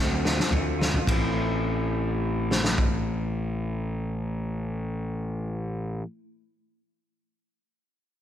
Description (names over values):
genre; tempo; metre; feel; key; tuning
quiet-loud alternative rock; 105 BPM; 4/4; straight; A minor; A4 = 445 Hz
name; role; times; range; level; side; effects
electric guitar through a small old amp; arpeggios; 0.0-6.1 s; A2 to F4; -32 LUFS; left 2 dB; none
fuzz picked electric bass; bass; 0.0-6.0 s; A1 to D2; -29 LUFS; equal; overdrive
loose indie drum kit; drums; 0.3-2.9 s; kick drum, ride cymbal, snare drum, toms; -26 LUFS; equal; none
room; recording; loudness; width
light reverb, small room ambience; none; -25 LUFS; side -10 dB against mid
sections
0.0-1.1 A section; 1.1-5.6 B section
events
drum fill 0.0-1.1; slowing down 0.0-1.1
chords
0.0 Dm7; 1.1 Am